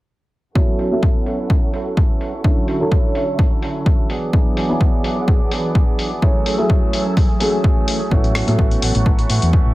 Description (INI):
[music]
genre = filtered disco house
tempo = 127 BPM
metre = 4/4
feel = swing 53% on 16ths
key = A major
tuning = A4 = 442 Hz
[part]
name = dark grand piano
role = accompaniment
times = 0.6-9.7 s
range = D3 to A4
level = -22 LUFS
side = equal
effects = phaser, sidechain pumping, low-pass filter
[part]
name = warm studio string section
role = sustained chords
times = 0.6-9.7 s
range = D3 to E6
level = -28 LUFS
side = equal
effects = vintage 12-bit sampler grit, sidechain pumping, low-pass filter
[part]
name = direct-recorded clean electric guitar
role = riff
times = 0.6-9.7 s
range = E3 to A4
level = -26 LUFS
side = right 3 dB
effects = sidechain pumping, low-pass filter
[part]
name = electronic kick drum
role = drums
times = 0.6-9.6 s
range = none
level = -16 LUFS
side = equal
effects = small room ambience
[part]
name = dusty soul sampler-style drum kit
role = drums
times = 0.8-9.5 s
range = hi-hat, rim click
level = -26 LUFS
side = left 2 dB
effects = sidechain pumping on hats, low-pass filter on hats, small room ambience, low-pass filter on snare
[part]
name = fingered electric bass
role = bass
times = 8.1-9.7 s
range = A1 to A2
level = -18 LUFS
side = equal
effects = sidechain pumping, low-pass filter
[sound]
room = little or no reverb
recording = none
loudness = -15 LUFS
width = side -18 dB against mid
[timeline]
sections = 0.6-9.7 A section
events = filter sweep on drum 0.6-9.7; filter sweep 0.6-9.7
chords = 0.6 A6; 2.4 Dmaj9; 4.1 E9; 6.2 F#m9; 8.1 A6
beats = | 0.56 1.03 1.50 1.97 | 2.45 2.92 3.39 3.86 | 4.33 4.81 5.28 5.75 | 6.22 6.70 7.17 7.64 | 8.12 8.59 9.06 9.53